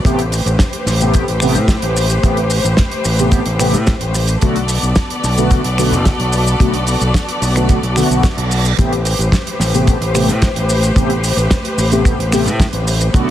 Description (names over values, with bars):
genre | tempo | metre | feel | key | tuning
nu-disco, nu disco | 110 BPM | 4/4 | straight | A dorian | A4 = 443 Hz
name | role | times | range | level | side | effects
mellow synth brass | accompaniment | 0.0-13.3 s | C3 to G4 | -19 LUFS | equal | chorus, tape echo
growling fingered electric bass | bass | 0.0-13.3 s | F#1 to A2 | -17 LUFS | equal | overdrive, tube saturation
kick drum | drums | 0.0-13.3 s | none | -15 LUFS | equal | studio reverb
rich symphonic string section | sustained chords | 0.1-13.3 s | A3 to D5 | -20 LUFS | left 1 dB | sidechain pumping
damped 70s drum kit | drums | 0.1-13.3 s | finger snaps, hi-hat, shaker, snare drum | -21 LUFS | right 1 dB | studio reverb
reverse cymbal | sound effects | 8.3-8.8 s | none | -28 LUFS | right 9 dB | none
room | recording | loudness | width
light reverb, small room ambience | heavily compressed radio sound, multiband compression | -12 LUFS | side -12 dB against mid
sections
0.0-13.3 A section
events
reverse cymbal 8.3-8.8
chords
0.1 Am9; 4.4 Bm7; 8.8 Am9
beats
| 0.05 0.60 1.14 1.69 | 2.23 2.78 3.33 3.87 | 4.42 4.96 5.51 6.05 | 6.60 7.14 7.69 8.23 | 8.78 9.32 9.87 10.42 | 10.96 11.51 12.05 12.60 | 13.14